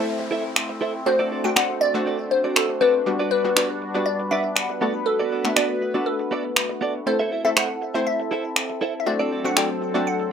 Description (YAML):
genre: dance-pop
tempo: 120 BPM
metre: 4/4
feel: straight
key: A dorian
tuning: A4 = 440 Hz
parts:
  - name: glassy wavetable pluck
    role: melody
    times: 0.0-10.3 s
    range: A4 to G5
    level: -24 LUFS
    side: left 2 dB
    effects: chorus
  - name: analog pluck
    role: accompaniment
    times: 0.0-10.3 s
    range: G3 to C5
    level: -27 LUFS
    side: left 2 dB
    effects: chorus
  - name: sweeping resonant pad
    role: sustained chords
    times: 0.0-10.3 s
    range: F#3 to C5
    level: -27 LUFS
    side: left 1 dB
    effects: chorus, phaser
  - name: direct-recorded clean electric guitar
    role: riff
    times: 0.0-10.2 s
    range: B3 to E5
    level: -27 LUFS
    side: right 4 dB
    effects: lush chorus
  - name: downlifter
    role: sound effects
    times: 0.0-3.1 s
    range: none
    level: -40 LUFS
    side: equal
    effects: none
  - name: electronic finger snaps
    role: drums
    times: 0.6-9.7 s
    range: none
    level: -20 LUFS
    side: equal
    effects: overdrive
room: moderate studio reverb, RT60 0.6 s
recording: rough home demo mix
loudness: -20 LUFS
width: side -7 dB against mid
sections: 0.0-10.3 A section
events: none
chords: 0.0 Am; 1.1 D7; 3.1 Gmaj7; 4.8 Bm7; 7.1 Am; 9.1 D7